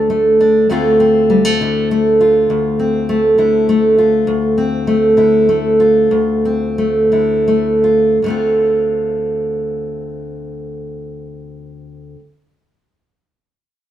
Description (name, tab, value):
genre	folk, solo fingerstyle acoustic guitar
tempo	78-101 BPM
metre	3/4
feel	straight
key	D minor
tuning	A4 = 440 Hz
part	fingerpicked steel-string acoustic guitar	solo	0.0-12.2 s	D2 to F4	-12 LUFS	equal	none
room	moderate studio reverb, RT60 0.9 s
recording	band playing live in one room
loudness	-11 LUFS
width	side -11 dB against mid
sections	0.7-8.2 A section; 8.2-12.8 B section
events	slowing down 4.3-8.2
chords	0.0 D5; 0.7 Dm7